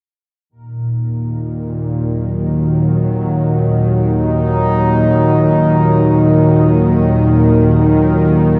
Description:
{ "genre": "dark ambient drone", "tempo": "free time", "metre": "none", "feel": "none", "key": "Eb minor", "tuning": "A4 = 440 Hz", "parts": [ { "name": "sweeping resonant pad", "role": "sustained chords", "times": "0.5-8.6 s", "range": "Bb2 to Bb4", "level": "-16 LUFS", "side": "equal", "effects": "chorus, shimmer reverb" }, { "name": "bowed-like drone", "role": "drone", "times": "1.3-8.6 s", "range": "Eb2 to Eb3", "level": "-17 LUFS", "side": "equal", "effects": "built-in reverb" }, { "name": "bubbling stepped-filter texture", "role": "texture", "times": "0.5-8.6 s", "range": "Bb3 to Bb4", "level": "-38 LUFS", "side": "equal", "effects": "none" } ], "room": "wet huge ambient reverb, RT60 7.6 s", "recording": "dark, warm production", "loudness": "-14 LUFS", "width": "mono", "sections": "0.5-8.6 A section", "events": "none", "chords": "0.5 Ebm", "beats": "free time" }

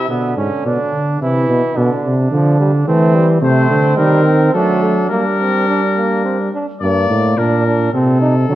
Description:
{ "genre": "classical, imitative canzona for brass ensemble", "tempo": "107 BPM", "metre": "3/4", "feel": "straight", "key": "G minor from 3.4 s", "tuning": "A4 = 436 Hz", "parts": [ { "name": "clear trumpet", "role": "melody", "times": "0.0-0.1, 3.4-8.6 s", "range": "A4 to D5", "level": "-20 LUFS", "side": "left 5 dB", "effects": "none" }, { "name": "warm trumpet", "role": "second line", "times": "0.0-6.5 s", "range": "B3 to E4", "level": "-21 LUFS", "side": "right 4 dB", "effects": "none" }, { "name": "brilliant trombone", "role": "accompaniment", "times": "0.0-8.6 s", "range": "D3 to Eb4", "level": "-19 LUFS", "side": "right 1 dB", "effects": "none" }, { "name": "warm bass trombone", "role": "bass", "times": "0.1-8.6 s", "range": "G2 to G3", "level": "-14 LUFS", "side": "right 1 dB", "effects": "none" } ], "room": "moderate recital hall reverb, RT60 1.7 s", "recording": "worn, warbling old tape, cassette tape, warbly pitch drift", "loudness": "-12 LUFS", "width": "side -14 dB against mid", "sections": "0.1-6.8 A section; 6.8-8.6 B section", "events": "none", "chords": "0.1 G#dim (rootless); 1.2 Cmaj7; 1.8 Bdim (rootless); 2.9 Am/E; 3.4 Cm; 4.6 D/F#; 5.1 Gm; 7.9 Cm", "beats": "| 0.09 0.66 1.22 | 1.77 2.33 2.88 | 3.44 3.99 4.55 | 5.12 5.68 6.25 | 6.82 7.38 7.94 | 8.50" }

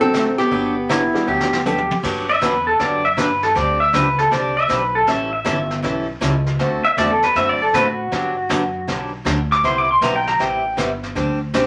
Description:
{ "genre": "country, western swing", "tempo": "158 BPM", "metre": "4/4", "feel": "swing 66% on 8ths", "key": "G major", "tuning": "A4 = 439 Hz", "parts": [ { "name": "archtop guitar, miked and amplified", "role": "melody", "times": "0.0-1.6 s", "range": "B3 to A4", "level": "-21 LUFS", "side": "equal", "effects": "none" }, { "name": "honky-tonk upright piano", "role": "accompaniment", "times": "0.0-1.9 s", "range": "F#3 to A4", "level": "-30 LUFS", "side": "equal", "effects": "none" }, { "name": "upright bass", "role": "bass", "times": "0.0-11.7 s", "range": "G1 to A2", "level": "-29 LUFS", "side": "equal", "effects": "none" }, { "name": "picked swing-style acoustic guitar", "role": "accompaniment", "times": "0.1-11.7 s", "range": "C3 to A4", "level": "-25 LUFS", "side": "equal", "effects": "none" }, { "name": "vintage brush drum kit", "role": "drums", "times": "0.1-11.7 s", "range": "brushed snare drum, crash cymbal, hi-hat, kick drum, snare drum, toms", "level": "-29 LUFS", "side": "equal", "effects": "none" }, { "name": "pedal steel guitar", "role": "second line", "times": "0.9-10.8 s", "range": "E4 to D6", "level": "-20 LUFS", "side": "equal", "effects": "none" } ], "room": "wet club reverb, RT60 0.6 s", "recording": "none", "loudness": "-18 LUFS", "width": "mono", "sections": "0.0-2.0 A section; 2.0-11.7 B section", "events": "drum fill 1.3-2.0; pedal steel guitar solo 2.0-11.7", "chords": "0.0 D7; 0.5 Gmaj7; 3.6 D7sus4; 5.1 A7; 6.6 D7; 8.1 Gmaj7; 9.6 Cmaj7; 11.2 D7sus4", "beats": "0.13 | 0.51 0.89 1.27 1.65 | 2.03 2.41 2.79 3.17 | 3.55 3.93 4.31 4.69 | 5.08 5.46 5.83 6.22 | 6.60 6.98 7.36 7.74 | 8.12 8.50 8.88 9.26 | 9.64 10.02 10.40 10.78 | 11.16 11.54" }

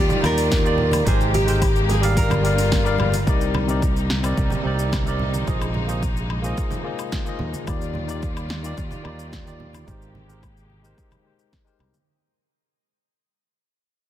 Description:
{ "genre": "sunset chillout", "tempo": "109 BPM", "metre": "4/4", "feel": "straight", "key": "unclear", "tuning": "A4 = 440 Hz", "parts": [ { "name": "nylon-string guitar", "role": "melody", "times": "0.0-3.0 s", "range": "G4 to Bb4", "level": "-25 LUFS", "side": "equal", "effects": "ping-pong delay, shimmer reverb" }, { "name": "barky tine electric piano", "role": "accompaniment", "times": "0.0-11.9 s", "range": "C3 to F5", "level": "-27 LUFS", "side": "moving between left 7 dB and right 6 dB", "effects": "overdrive, auto-pan, ping-pong delay, shimmer reverb" }, { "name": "clear studio string section", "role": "sustained chords", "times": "0.0-12.1 s", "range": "C3 to D5", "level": "-30 LUFS", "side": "left 1 dB", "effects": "low-pass filter, shimmer reverb" }, { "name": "overdriven fingered electric bass", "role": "bass", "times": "0.0-11.9 s", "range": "G1 to Eb2", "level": "-24 LUFS", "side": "equal", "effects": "tube saturation" }, { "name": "deep house drum kit", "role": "drums", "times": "0.1-12.0 s", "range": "hi-hat, shaker, snare drum, woodblock", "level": "-31 LUFS", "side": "left 1 dB", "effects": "overdrive" }, { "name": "bongos and congas", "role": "percussion", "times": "0.1-12.0 s", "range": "none", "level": "-31 LUFS", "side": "right 3 dB", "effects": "none" }, { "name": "electronic kick drum", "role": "drums", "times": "0.5-11.6 s", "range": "none", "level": "-24 LUFS", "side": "equal", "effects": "overdrive" } ], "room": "light reverb, studio ambience", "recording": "dense, heavily limited modern master", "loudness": "-19 LUFS", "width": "side -12 dB against mid", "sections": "0.0-3.3 A section; 3.3-12.1 B section", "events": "fade-out 3.3-12.1", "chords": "0.0 Ebmaj9; 1.1 Abmaj9; 2.2 Gm7; 3.3 Cm7; 5.5 Bb9sus4; 7.7 Ebmaj9; 9.9 Abmaj9", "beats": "0.52 | 1.07 1.62 2.17 2.72 | 3.27 3.82 4.37 4.92 | 5.47 6.02 6.57 7.12 | 7.67 8.22 8.77 9.32 | 9.87 10.42 10.97 11.52" }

